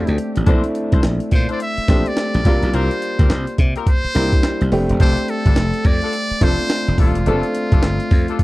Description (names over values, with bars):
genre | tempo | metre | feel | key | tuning
R&B, new jack swing | 106 BPM | 4/4 | swing 62% on 16ths | F major | A4 = 438 Hz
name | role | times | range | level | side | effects
trumpet with metal mute | melody | 0.0-8.4 s | F4 to E5 | -24 LUFS | equal | none
warm concert grand piano | accompaniment | 0.0-8.4 s | G3 to A4 | -22 LUFS | equal | none
slap bass | bass | 0.0-8.3 s | Eb1 to C3 | -19 LUFS | equal | none
breakbeat sampler-style drum kit | drums | 0.1-8.4 s | hi-hat, kick drum, snare drum | -16 LUFS | equal | vintage 12-bit sampler grit
warm horn section | stabs | 0.5-8.4 s | C4 to C5 | -28 LUFS | left 7 dB | none
room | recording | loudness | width
little or no reverb | dry, close 1970s-style studio recording | -15 LUFS | side -19 dB against mid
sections
0.0-8.4 A section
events
none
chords
0.5 Bbmaj9#11; 2.5 C7sus4; 4.7 F69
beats
| 0.47 1.04 1.60 2.17 | 2.73 3.30 3.87 4.43 | 5.00 5.57 6.13 6.70 | 7.26 7.83 8.39